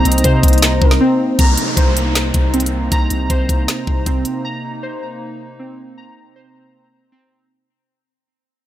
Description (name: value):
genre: hip hop, trap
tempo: 157 BPM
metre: 4/4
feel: half-time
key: C minor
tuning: A4 = 440 Hz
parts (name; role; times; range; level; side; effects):
- hollow soft pad; sustained chords; 0.0-7.5 s; C3 to Eb4; -24 LUFS; equal; chorus
- warbly lo-fi synth keys; arpeggios; 0.0-7.5 s; C4 to Bb5; -20 LUFS; equal; chorus, low-pass filter, ping-pong delay
- long sustained 808-style bass; bass; 0.0-4.2 s; C2 to C3; -18 LUFS; equal; none
- gliding portamento lead; second line; 0.1-1.0 s; Bb4 to Eb5; -27 LUFS; right 2 dB; chorus, ping-pong delay
- trap drum kit; drums; 0.1-4.3 s; handclaps, hi-hat, kick drum, snare drum; -15 LUFS; equal; none
- downlifter; sound effects; 1.4-4.4 s; none; -24 LUFS; left 1 dB; none
room: digital ambience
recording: none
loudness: -13 LUFS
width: side -13 dB against mid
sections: 0.0-1.4 A section; 1.4-7.5 B section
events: break 1.0-1.4; fade-out 1.4-7.5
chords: 0.0 Cm7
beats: 0.24 0.62 1.01 | 1.39 1.77 2.15 2.54 | 2.92 3.30 3.68 4.06 | 4.45 4.83 5.21 5.59 | 5.97 6.36 6.74 7.12